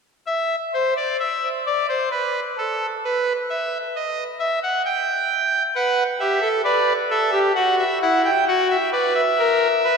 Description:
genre	classical, baroque-style 3-part fugue for pipe organ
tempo	66 BPM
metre	3/4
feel	straight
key	unclear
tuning	A4 = 440 Hz
part	pipe organ, trumpet	solo	0.3-10.0 s	E4 to G5	-18 LUFS	equal	none
room	wet church reverb, RT60 4.0 s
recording	dark, warm production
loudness	-18 LUFS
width	side -5 dB against mid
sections	0.3-10.0 A section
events	none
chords	0.3 N.C.; 5.8 Bm; 7.6 Emadd9; 8.5 F#7

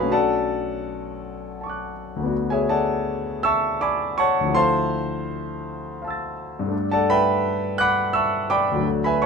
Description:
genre	classical, impressionist solo piano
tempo	83 BPM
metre	3/4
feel	uneven beats, rubato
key	unclear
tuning	A4 = 440 Hz
part	warm concert grand piano	solo	0.0-9.3 s	B1 to A6	-20 LUFS	equal	none
room	light reverb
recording	minimal, uncompressed stereo recording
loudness	-20 LUFS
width	side -5 dB against mid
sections	0.0-9.3 A section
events	none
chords	0.1 Dmaj7/B; 2.3 D6; 4.6 Fmaj7/D; 6.7 Gadd9

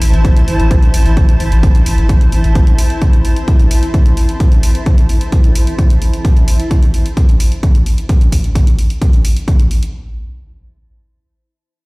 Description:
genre	driving peak-time techno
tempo	130 BPM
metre	4/4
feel	straight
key	A minor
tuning	A4 = 436 Hz
part	saturated sub bass	bass	0.0-2.6 s	A1	-11 LUFS	equal	overdrive, sidechain pumping, low-pass filter
part	electronic hi-hat	drums	0.0-9.9 s	none	-28 LUFS	equal	overdrive, sidechain pumping on hats, sidechain pumping on cymbals
part	granular cloud pad	texture	0.0-6.2 s	E4 to A5	-22 LUFS	equal	built-in reverb, sidechain pumping
part	electronic kick drum	drums	0.2-9.6 s	none	-10 LUFS	equal	none
room	little or no reverb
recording	played on a big sound system in a bare room, large studio reverb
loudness	-9 LUFS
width	side -24 dB against mid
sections	0.0-9.9 A section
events	none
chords	0.0 Am

